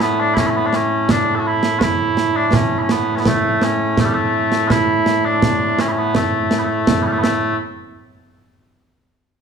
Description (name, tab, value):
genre	scottish traditional, Scottish pipe music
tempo	83 BPM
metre	2/4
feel	straight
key	A major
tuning	A4 = 438 Hz
part	mellow small bagpipes	melody	0.0-7.6 s	A2 to A4	-16 LUFS	equal	none
part	concert snare drum and concert bass drum	drums	0.0-7.6 s	none	-20 LUFS	right 3 dB	none
room	moderate recital hall reverb, RT60 1.4 s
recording	small room reverb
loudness	-15 LUFS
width	side -6 dB against mid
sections	0.0-7.6 A section; 7.6-9.0 B section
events	none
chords	none